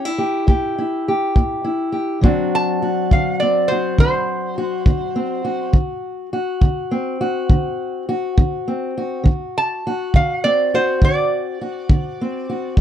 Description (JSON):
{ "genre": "acoustic country blues, solo or duo", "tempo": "68 BPM (dotted quarters)", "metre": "12/8", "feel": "straight", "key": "D mixolydian", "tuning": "A4 = 439 Hz", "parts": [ { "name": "lap resonator guitar", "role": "melody", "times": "0.0-12.7 s", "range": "C5 to A5", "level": "-20 LUFS", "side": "right 2 dB", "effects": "none" }, { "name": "fingerpicked steel-string acoustic guitar", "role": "accompaniment", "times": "0.0-12.8 s", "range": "A2 to G4", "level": "-20 LUFS", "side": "left 1 dB", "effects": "none" }, { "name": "kick drum", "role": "drums", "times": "0.5-12.8 s", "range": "none", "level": "-14 LUFS", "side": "equal", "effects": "none" } ], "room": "light reverb", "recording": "dark, warm production", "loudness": "-17 LUFS", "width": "side -10 dB against mid", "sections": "0.0-2.2 A section; 2.2-12.8 B section", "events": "resonator guitar played with a steel bar solo 2.2-12.8", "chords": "0.0 A7(no3); 2.2 D7" }